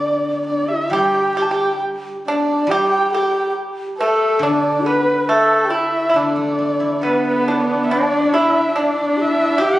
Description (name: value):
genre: chinese traditional, Chinese chamber ensemble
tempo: 69 BPM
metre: 2/4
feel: rubato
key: D zhi mode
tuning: A4 = 439 Hz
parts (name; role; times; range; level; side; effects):
- dark erhu; melody; 0.0-9.8 s; A4 to A5; -20 LUFS; right 1 dB; none
- breathy low xiao; second line; 0.0-9.8 s; D4 to B4; -22 LUFS; left 1 dB; none
- steel-string zither; accompaniment; 0.0-8.7 s; D3 to A4; -25 LUFS; left 1 dB; none
- pipa; second line; 0.9-9.8 s; A3 to G4; -20 LUFS; right 1 dB; none
- clear horsehead fiddle; second line; 7.0-9.8 s; B3 to G4; -20 LUFS; equal; none
room: wet scoring stage reverb, RT60 1.5 s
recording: recorded on a phone in the room, club reverb, compression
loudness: -15 LUFS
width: side -15 dB against mid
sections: 0.0-7.9 A section; 7.9-9.8 B section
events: none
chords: none